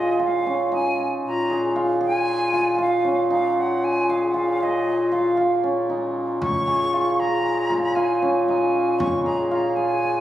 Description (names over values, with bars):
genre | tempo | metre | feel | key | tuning
contemporary instrumental, chamber music in an uneven meter | 116 BPM | 5/4 | straight | Bb minor | A4 = 440 Hz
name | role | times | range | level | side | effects
bright silver concert flute | melody | 0.0-10.2 s | Eb5 to Db6 | -26 LUFS | equal | none
cimbalom | arpeggios | 0.0-10.2 s | Db4 to Ab4 | -24 LUFS | right 2 dB | none
clear bass clarinet | bass | 0.0-10.2 s | Bb2 | -22 LUFS | left 2 dB | none
frame drum | percussion | 6.4-10.2 s | none | -31 LUFS | equal | none
room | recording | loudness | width
wet recital hall reverb, RT60 1.6 s | recorded on a phone in the room, club reverb, compression | -19 LUFS | side -12 dB against mid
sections
0.0-10.2 A section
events
none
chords
0.0 Bbm7